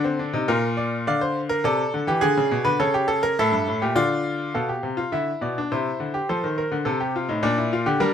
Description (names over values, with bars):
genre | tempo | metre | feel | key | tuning
classical, baroque-style 3-part fugue for grand piano | 104 BPM | 3/4 | straight | G minor | A4 = 439 Hz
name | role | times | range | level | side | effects
bright grand piano | solo | 0.0-8.1 s | G2 to F5 | -21 LUFS | left 1 dB | none
room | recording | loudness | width
light reverb | close, detailed microphones | -21 LUFS | side -8 dB against mid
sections
0.0-4.5 A section; 4.5-8.1 B section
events
none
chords
0.5 Bb; 1.1 Dm; 2.2 Bm69; 2.8 A/C#; 3.9 Dm; 4.5 G7/B; 5.7 C; 6.3 F7; 7.4 Bb